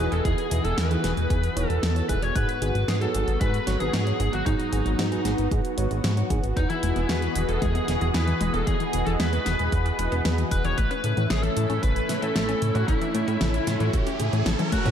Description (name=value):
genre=synthwave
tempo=114 BPM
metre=4/4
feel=straight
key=E major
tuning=A4 = 440 Hz
part: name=biting lead guitar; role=melody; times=0.0-14.9 s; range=D#4 to C#5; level=-29 LUFS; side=left 1 dB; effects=overdrive, analog delay
part: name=lush unison pad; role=sustained chords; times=0.0-14.9 s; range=E3 to D#5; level=-30 LUFS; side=equal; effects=chorus, phaser, sidechain pumping
part: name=mellow FM electric piano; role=stabs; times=0.0-6.4 s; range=G#2 to C#5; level=-33 LUFS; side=right 2 dB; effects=chorus, analog delay
part: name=chorused synth bass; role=bass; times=0.0-14.9 s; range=E1 to A2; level=-26 LUFS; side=equal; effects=none
part: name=pop drum kit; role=drums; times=0.1-14.9 s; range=hi-hat, snare drum, toms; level=-31 LUFS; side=equal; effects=none
part: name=electronic kick drum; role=drums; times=0.2-14.8 s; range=none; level=-27 LUFS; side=equal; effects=none
part: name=wide unison pluck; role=arpeggios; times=6.6-14.9 s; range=C#3 to C#4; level=-32 LUFS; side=left 3 dB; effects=analog delay
part: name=riser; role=sound effects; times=12.6-14.9 s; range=none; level=-34 LUFS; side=right 2 dB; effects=none
room=moderate lush hall reverb, RT60 1.8 s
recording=dreamy mix soaked in reverb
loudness=-22 LUFS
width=side -9 dB against mid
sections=0.0-14.9 A section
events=riser 12.6-14.9; drum fill 14.5-14.9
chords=0.0 Emaj7; 2.4 G#m7; 6.6 Emaj7; 10.8 A